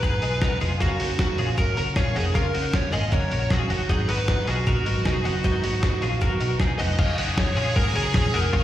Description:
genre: jangly indie pop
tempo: 155 BPM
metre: 4/4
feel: straight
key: F# major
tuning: A4 = 440 Hz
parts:
  - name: fuzz lead guitar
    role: melody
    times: 0.0-8.6 s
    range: F#4 to D#5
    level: -28 LUFS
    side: right 1 dB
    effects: distortion, slapback echo
  - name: picked twelve-string acoustic guitar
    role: accompaniment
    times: 0.0-7.0 s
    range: F#2 to D#4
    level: -32 LUFS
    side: right 5 dB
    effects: wide subtle chorus, slapback echo
  - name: twelve-string electric guitar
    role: arpeggios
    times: 0.0-8.6 s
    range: B3 to B4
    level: -30 LUFS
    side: left 5 dB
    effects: tube saturation, tremolo, slapback echo, digital delay
  - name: picked electric bass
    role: bass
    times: 0.0-8.6 s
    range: E#1 to B1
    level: -26 LUFS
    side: equal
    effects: none
  - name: lo-fi sampler-style drum kit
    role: drums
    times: 0.0-8.6 s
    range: crash cymbal, hi-hat, kick drum, ride cymbal, snare drum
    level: -25 LUFS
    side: equal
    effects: none
  - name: brilliant trumpet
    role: second line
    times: 7.0-8.6 s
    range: F#4 to G#4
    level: -30 LUFS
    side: right 1 dB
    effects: slapback echo
room: light reverb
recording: live gig heard through the venue's PA, recital hall reverb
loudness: -20 LUFS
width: side -12 dB against mid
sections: 0.0-7.0 A section; 7.0-8.6 B section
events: none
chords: 0.0 G#m7; 0.8 F#maj7; 3.9 G#m7; 7.0 F#

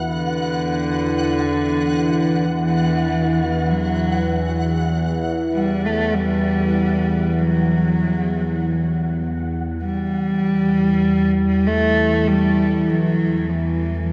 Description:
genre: dark ambient drone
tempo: free time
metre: none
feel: none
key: unclear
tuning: A4 = 438 Hz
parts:
  - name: deep dark ambient pad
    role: sustained chords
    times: 0.0-9.8 s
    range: E4 to F#5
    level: -34 LUFS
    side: equal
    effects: chorus, built-in reverb
  - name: analog drone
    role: drone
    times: 0.0-14.1 s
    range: E2 to E3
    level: -24 LUFS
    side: equal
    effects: chorus
  - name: flickering grainy texture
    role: texture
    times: 0.0-9.9 s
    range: F#5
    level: -33 LUFS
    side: equal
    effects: built-in reverb
  - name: dark cello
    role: melody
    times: 0.1-14.1 s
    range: D3 to A3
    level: -22 LUFS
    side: equal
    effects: delay
room: wet huge ambient reverb, RT60 7.6 s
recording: worn, warbling old tape, cassette tape, warbly pitch drift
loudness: -19 LUFS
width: mono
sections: 0.0-9.8 A section; 9.8-14.1 B section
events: fade-in on synth drone 0.0-9.8; fade-out on ambient pad 0.0-9.8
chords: 0.0 Esus2; 9.8 Em

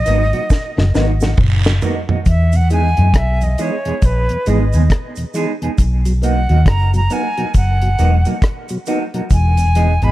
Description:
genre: roots reggae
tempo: 68 BPM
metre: 4/4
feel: swing 61% on 16ths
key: unclear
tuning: A4 = 440 Hz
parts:
  - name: breathy bright concert flute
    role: melody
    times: 0.0-10.1 s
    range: B4 to B5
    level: -21 LUFS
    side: right 1 dB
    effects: tape echo
  - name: vintage muted fingered electric bass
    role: bass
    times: 0.0-10.1 s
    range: E1 to F#2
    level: -14 LUFS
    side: equal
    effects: none
  - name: mellow electric guitar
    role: accompaniment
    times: 0.1-10.1 s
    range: E3 to G#4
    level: -24 LUFS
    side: right 3 dB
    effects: phaser, tape echo
  - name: mellow tonewheel organ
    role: accompaniment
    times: 0.1-10.1 s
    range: E2 to D#4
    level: -23 LUFS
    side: equal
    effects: slow rotary speaker
  - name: deep reggae drum kit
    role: drums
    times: 0.1-10.1 s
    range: hi-hat, kick drum, rim click, snare drum, toms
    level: -16 LUFS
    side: equal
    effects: none
  - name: cabasa and guiro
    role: percussion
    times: 0.1-10.0 s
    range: none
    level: -33 LUFS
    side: right 5 dB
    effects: none
room: little or no reverb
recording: echo-heavy mix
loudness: -13 LUFS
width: side -16 dB against mid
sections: 0.0-2.3 A section; 2.3-10.1 B section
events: drum fill 0.5-2.3; flute solo 2.3-10.1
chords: 0.0 Bmaj7; 2.3 Emaj7; 5.8 Bmaj7; 9.3 Emaj7

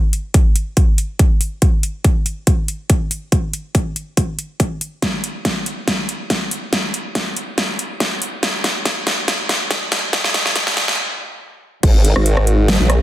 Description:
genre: heavy wobble dubstep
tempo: 141 BPM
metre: 4/4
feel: swing 53% on 16ths, half-time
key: unclear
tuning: A4 = 440 Hz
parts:
  - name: dubstep drum kit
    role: drums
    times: 0.1-13.0 s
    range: crash cymbal, hi-hat, rim click, snare drum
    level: -18 LUFS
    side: equal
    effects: none
  - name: electronic kick drum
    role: drums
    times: 0.3-11.9 s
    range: none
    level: -16 LUFS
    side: equal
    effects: overdrive
  - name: formant-sweep wobble bass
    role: bass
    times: 11.8-13.0 s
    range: G#1 to A#1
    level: -14 LUFS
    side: equal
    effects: chorus, overdrive
room: moderate plate reverb, RT60 1.6 s, digital ambience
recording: dense, heavily limited modern master, high-pass filter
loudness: -16 LUFS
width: side -14 dB against mid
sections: 0.0-11.8 A section; 11.8-13.0 B section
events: build-up 0.0-11.8; filter sweep 0.0-11.8; drum fill 5.0-11.0; stop 11.0-11.8; drop 11.8-13.0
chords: none

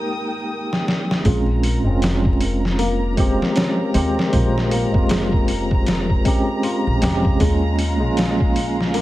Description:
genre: trip hop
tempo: 78 BPM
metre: 4/4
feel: swing 60% on 16ths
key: Bb dorian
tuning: A4 = 443 Hz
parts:
  - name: mellow tine electric piano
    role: accompaniment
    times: 0.0-9.0 s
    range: Ab3 to C5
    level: -22 LUFS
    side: right 1 dB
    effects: medium stereo tremolo, tape echo
  - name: muted studio violin section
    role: sustained chords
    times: 0.0-9.0 s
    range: Ab3 to Eb6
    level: -29 LUFS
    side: equal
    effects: none
  - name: felt-muted upright piano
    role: arpeggios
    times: 0.0-9.0 s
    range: G3 to F4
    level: -28 LUFS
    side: left 2 dB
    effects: vintage 12-bit sampler grit, tape echo
  - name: trip hop sampler-style drum kit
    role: drums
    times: 0.7-9.0 s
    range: hi-hat, kick drum, snare drum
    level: -20 LUFS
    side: equal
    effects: none
  - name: upright bass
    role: bass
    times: 1.3-9.0 s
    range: F1 to Eb2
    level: -22 LUFS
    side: equal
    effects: none
room: little or no reverb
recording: vinyl crackle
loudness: -16 LUFS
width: side -16 dB against mid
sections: 0.0-1.3 A section; 1.3-9.0 B section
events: break 0.0-1.3; filter sweep on tine electric piano 0.0-1.3; drum fill 0.7-1.3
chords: 0.0 Fm11 (rootless); 1.3 Bbm9; 7.4 Eb9sus4

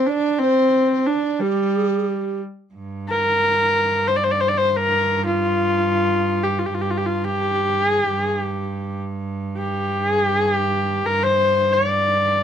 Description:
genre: mongolian traditional, Mongolian folk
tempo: 90 BPM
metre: 4/4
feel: straight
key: G yu mode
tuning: A4 = 440 Hz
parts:
  - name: clear horsehead fiddle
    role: melody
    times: 0.0-12.4 s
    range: G3 to D5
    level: -18 LUFS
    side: left 2 dB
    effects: none
  - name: mellow hollow large dizi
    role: second line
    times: 0.0-2.4 s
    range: G4 to D5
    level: -22 LUFS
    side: right 6 dB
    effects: none
  - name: rich cello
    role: drone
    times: 2.7-12.4 s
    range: G2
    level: -26 LUFS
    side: right 4 dB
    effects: none
room: light reverb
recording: dark, warm production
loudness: -18 LUFS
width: side -8 dB against mid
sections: 0.0-2.7 A section; 2.7-12.4 B section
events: none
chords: none

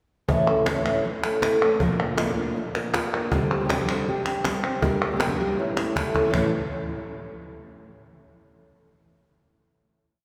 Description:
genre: flamenco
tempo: 159 BPM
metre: 4/4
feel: straight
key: unclear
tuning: A4 = 442 Hz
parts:
  - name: nylon-string guitar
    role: accompaniment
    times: 0.3-6.5 s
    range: A2 to C5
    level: -28 LUFS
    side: equal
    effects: none
  - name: flamenco guitar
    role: stabs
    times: 0.3-6.5 s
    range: G2 to G4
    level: -32 LUFS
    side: equal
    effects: none
  - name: cajon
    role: percussion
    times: 0.3-6.4 s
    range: none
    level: -32 LUFS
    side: equal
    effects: none
  - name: palmas hand claps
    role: percussion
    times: 0.5-6.4 s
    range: none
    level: -32 LUFS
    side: equal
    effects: none
room: wet church reverb, RT60 3.3 s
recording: recorded in a church or concert hall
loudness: -24 LUFS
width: mono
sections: 0.3-6.3 groove; 6.3-7.8 final chord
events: drum fill 5.8-6.3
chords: 0.3 A; 1.8 Bb; 3.3 Csus2; 4.8 Gm; 5.6 A

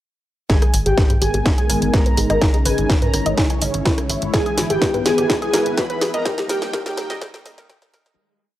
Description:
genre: melodic techno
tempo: 125 BPM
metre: 4/4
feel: straight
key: G# harmonic minor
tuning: A4 = 440 Hz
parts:
  - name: expressive synth lead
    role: melody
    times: 0.5-7.1 s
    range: G4 to B4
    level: -24 LUFS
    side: equal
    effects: analog chorus, sidechain pumping, analog delay
  - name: soft supersaw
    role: second line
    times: 0.5-7.1 s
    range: G5 to B5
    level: -30 LUFS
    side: equal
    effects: sidechain pumping, low-pass filter, analog delay
  - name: sweeping resonant pad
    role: sustained chords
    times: 0.5-8.2 s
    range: G3 to C#5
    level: -27 LUFS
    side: left 2 dB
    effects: chorus, sidechain pumping
  - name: analog pluck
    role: arpeggios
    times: 0.5-8.0 s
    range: G4 to G#5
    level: -26 LUFS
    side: equal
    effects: chorus, sidechain pumping, analog delay
  - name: analog synth brass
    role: stabs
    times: 0.5-8.1 s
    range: G#2 to E4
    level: -28 LUFS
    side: right 2 dB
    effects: chorus, sidechain pumping, analog delay
  - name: tight sequencer bass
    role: bass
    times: 0.5-8.1 s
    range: G#1 to G#2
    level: -24 LUFS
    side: equal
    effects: sidechain pumping
  - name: electronic kick drum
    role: drums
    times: 0.5-7.8 s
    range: none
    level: -19 LUFS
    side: equal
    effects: distortion, overdrive
  - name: techno drum kit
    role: drums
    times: 0.5-8.2 s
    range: hi-hat, rim click, snare drum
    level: -23 LUFS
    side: equal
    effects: overdrive
  - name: riser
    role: sound effects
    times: 4.0-8.2 s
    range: none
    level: -41 LUFS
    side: right 1 dB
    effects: none
room: light reverb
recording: dry, gritty hardware recording, high-pass filter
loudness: -16 LUFS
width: side -14 dB against mid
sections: 0.5-8.2 build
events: build-up 0.5-8.2; drum fill 0.5-8.2; filter sweep on synth arpeggio sound 0.5-8.2; filter sweep on analog synth lead 0.5-8.2; filter sweep on supersaw synth 0.5-8.2; filter sweep on analog polysynth 0.5-8.2; filter sweep on analog synth pad 0.5-8.2; filter sweep 0.5-8.2; fade-out 5.6-8.2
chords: 0.5 G#madd9; 2.4 C#madd9/G#; 4.3 E/G#; 6.3 D#/G#

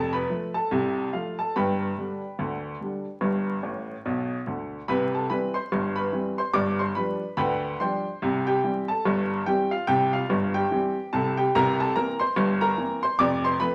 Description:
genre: ragtime piano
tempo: 72 BPM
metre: 2/4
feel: swing 60% on 16ths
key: C major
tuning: A4 = 441 Hz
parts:
  - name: clear upright piano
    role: solo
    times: 0.0-13.7 s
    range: F1 to D6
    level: -26 LUFS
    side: equal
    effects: none
room: wet studio reverb, RT60 0.9 s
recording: vinyl crackle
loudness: -26 LUFS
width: mono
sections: 0.0-13.7 A section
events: upright piano fill 3.6-4.9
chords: 0.0 F; 1.5 G; 4.9 C; 6.5 G7; 8.2 C; 11.5 C7; 13.2 F

